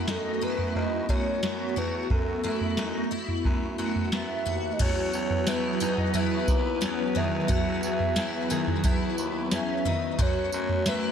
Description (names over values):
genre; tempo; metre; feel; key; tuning
dream pop; 89 BPM; 4/4; straight; unclear; A4 = 442 Hz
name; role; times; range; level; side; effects
hollow soft pad; sustained chords; 0.0-11.1 s; F#3 to B4; -30 LUFS; right 2 dB; ensemble chorus
picked twelve-string acoustic guitar; arpeggios; 0.0-11.1 s; D#3 to F#4; -33 LUFS; left 5 dB; ensemble chorus, ping-pong delay
raspy baritone saxophone; bass; 0.0-11.1 s; D#2 to F#2; -34 LUFS; equal; none
hollow clarinet-like synth lead; melody; 0.1-11.1 s; A4 to E5; -31 LUFS; equal; chorus, ping-pong delay
soft vintage rhythm box; drums; 0.1-11.0 s; crash cymbal, kick drum, snare drum, tambourine, toms; -29 LUFS; right 1 dB; none
room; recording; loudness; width
light reverb, digital ambience; none; -24 LUFS; side -8 dB against mid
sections
0.0-4.8 A section; 4.8-11.1 B section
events
none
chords
0.0 B7sus4; 4.8 Esus2; 10.2 B7sus4